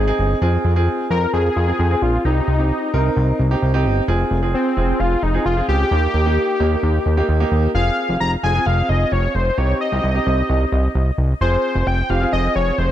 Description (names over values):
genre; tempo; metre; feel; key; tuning
synth-pop; 131 BPM; 4/4; straight; F minor; A4 = 440 Hz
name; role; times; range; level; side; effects
wide unison lead; melody; 0.0-12.9 s; C4 to Bb5; -21 LUFS; left 2 dB; tape echo
warm baby grand piano; accompaniment; 0.0-12.9 s; Bb3 to Bb4; -23 LUFS; right 2 dB; none
fat analog bass; bass; 0.0-12.9 s; F1 to F2; -18 LUFS; equal; none
room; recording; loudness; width
light reverb, studio reverb; dark, warm production; -16 LUFS; side -12 dB against mid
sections
0.0-7.7 A section; 7.7-12.9 B section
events
none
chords
0.4 Fm; 2.2 Cm; 4.1 Fm; 5.9 Eb; 7.7 Fm; 9.6 Cm; 11.4 Fm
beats
| 0.42 0.88 1.33 1.79 | 2.25 2.71 3.17 3.62 | 4.08 4.54 5.00 5.46 | 5.92 6.37 6.83 7.29 | 7.75 8.21 8.66 9.12 | 9.58 10.04 10.49 10.95 | 11.41 11.87 12.33 12.79